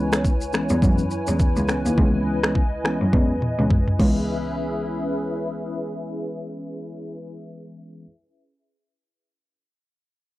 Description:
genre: afrobeats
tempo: 104 BPM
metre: 4/4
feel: swing 58% on 16ths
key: C# minor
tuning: A4 = 440 Hz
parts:
  - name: tine electric piano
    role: accompaniment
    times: 0.0-8.1 s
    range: E3 to C#4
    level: -27 LUFS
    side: left 1 dB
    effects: medium stereo tremolo, low-pass filter
  - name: hollow soft pad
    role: sustained chords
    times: 0.0-7.4 s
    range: C#4 to G#5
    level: -29 LUFS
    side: left 1 dB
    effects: ensemble chorus, low-pass filter
  - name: rich cello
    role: bass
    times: 0.0-7.4 s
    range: C#2 to F#2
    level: -24 LUFS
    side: equal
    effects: none
  - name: afro-pop drum kit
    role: drums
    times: 0.1-4.2 s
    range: crash cymbal, finger snaps, kick drum, rim click, shaker, toms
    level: -21 LUFS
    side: equal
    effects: overdrive
room: light reverb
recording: dry, gritty hardware recording, cassette tape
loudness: -20 LUFS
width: side -17 dB against mid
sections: 0.0-4.3 A section; 4.3-6.6 B section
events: filter sweep 0.0-4.3; drum fill 3.1-4.3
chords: 0.0 C#m7

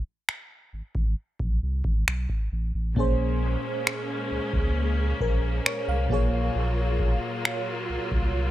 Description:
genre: contemporary R&B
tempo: 67 BPM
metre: 4/4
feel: straight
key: Bb minor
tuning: A4 = 444 Hz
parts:
  - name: booming analog drum machine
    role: drums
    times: 0.3-8.3 s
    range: finger snaps, kick drum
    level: -25 LUFS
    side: equal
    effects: none
  - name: warm sub bass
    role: bass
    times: 0.7-8.5 s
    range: Ab1 to Db2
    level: -27 LUFS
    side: equal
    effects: none
  - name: FM electric piano with soft pad layer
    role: accompaniment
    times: 2.9-8.5 s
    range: Bb2 to F5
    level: -29 LUFS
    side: equal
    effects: chorus, phaser, dub echo
  - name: clear studio string section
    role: sustained chords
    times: 3.0-8.5 s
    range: Gb3 to F4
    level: -33 LUFS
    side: left 1 dB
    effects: none
room: little or no reverb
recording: echo-heavy mix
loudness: -24 LUFS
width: side -14 dB against mid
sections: 0.0-8.5 A section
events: break 0.0-3.0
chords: 0.0 Ab; 2.1 Asus2; 3.0 Bbm7; 6.1 Gbmaj7/Bb

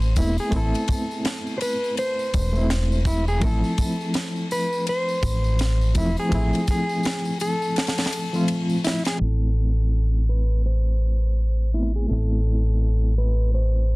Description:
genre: trip hop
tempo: 83 BPM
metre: 4/4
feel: swing 59% on 16ths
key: A harmonic minor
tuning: A4 = 435 Hz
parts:
  - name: mellow electric guitar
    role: melody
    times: 0.0-14.0 s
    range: E4 to C5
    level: -29 LUFS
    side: left 1 dB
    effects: tape echo
  - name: reed electric piano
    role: accompaniment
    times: 0.0-14.0 s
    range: F3 to F4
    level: -27 LUFS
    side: equal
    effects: fast tremolo, vintage 12-bit sampler grit, low-pass filter, tape echo
  - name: deep dub fingered electric bass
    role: bass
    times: 0.0-14.0 s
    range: E1 to A1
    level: -20 LUFS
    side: equal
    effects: none
  - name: tambourine and triangle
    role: percussion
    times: 0.0-14.0 s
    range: none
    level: -39 LUFS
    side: equal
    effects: none
  - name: tight funk drum kit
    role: drums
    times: 0.2-9.2 s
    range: kick drum, ride cymbal, snare drum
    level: -27 LUFS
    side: equal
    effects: small room ambience
room: little or no reverb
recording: dense, heavily limited modern master, vinyl crackle, low-pass filter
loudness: -20 LUFS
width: side -23 dB against mid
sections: 0.0-9.2 A section; 9.2-14.0 B section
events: filter sweep on reed electric piano 9.2-14.0; filter sweep 9.2-14.0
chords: 0.0 Amadd9; 3.4 Fmaj7; 9.2 Amadd9

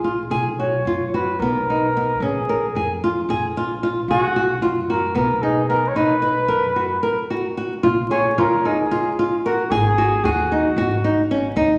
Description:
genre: contemporary instrumental, chamber music in an uneven meter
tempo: 224 BPM (eighths)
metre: 7/8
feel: straight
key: B lydian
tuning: A4 = 440 Hz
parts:
  - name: warm flugelhorn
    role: melody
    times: 0.0-11.3 s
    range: F#4 to C#5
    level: -24 LUFS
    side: equal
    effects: none
  - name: nylon-string guitar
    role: arpeggios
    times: 0.0-11.7 s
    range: B3 to B4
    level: -22 LUFS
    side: equal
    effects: none
  - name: upright bass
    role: bass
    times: 0.0-11.8 s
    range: G#1 to F#2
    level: -30 LUFS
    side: equal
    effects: none
room: wet recital hall reverb, RT60 1.6 s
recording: vinyl crackle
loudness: -20 LUFS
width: mono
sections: 0.0-7.8 A section; 7.8-11.8 B section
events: break 7.0-7.8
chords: 0.3 Bmaj7(no3); 2.2 A#7(no3); 4.1 B5; 6.0 Bmaj7(no3); 7.8 A#5; 9.7 G#5

